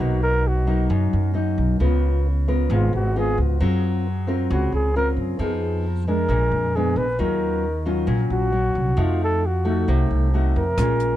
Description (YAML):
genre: bossa nova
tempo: 134 BPM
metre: 4/4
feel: straight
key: unclear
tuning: A4 = 445 Hz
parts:
  - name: dark flugelhorn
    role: melody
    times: 0.0-11.2 s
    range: F4 to Cb5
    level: -26 LUFS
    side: equal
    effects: tape echo
  - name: nylon-string guitar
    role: accompaniment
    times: 0.0-11.2 s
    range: F#2 to Bb4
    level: -24 LUFS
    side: left 2 dB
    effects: none
  - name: upright bass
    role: bass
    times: 0.0-11.2 s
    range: Ab1 to F#2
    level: -22 LUFS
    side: equal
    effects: none
  - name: compact cocktail drum kit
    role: drums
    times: 10.8-11.1 s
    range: hi-hat, kick drum, rim click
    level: -26 LUFS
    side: equal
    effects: none
room: little or no reverb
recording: dry, close 1970s-style studio recording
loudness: -19 LUFS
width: side -13 dB against mid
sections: 0.0-11.2 A section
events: flugelhorn solo 0.0-11.2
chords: 0.0 Bmaj7; 1.8 Db6; 3.6 Gbmaj7#11; 5.4 Fm7b5; 6.3 Bb7b9; 7.2 Ebm9; 9.0 F7b9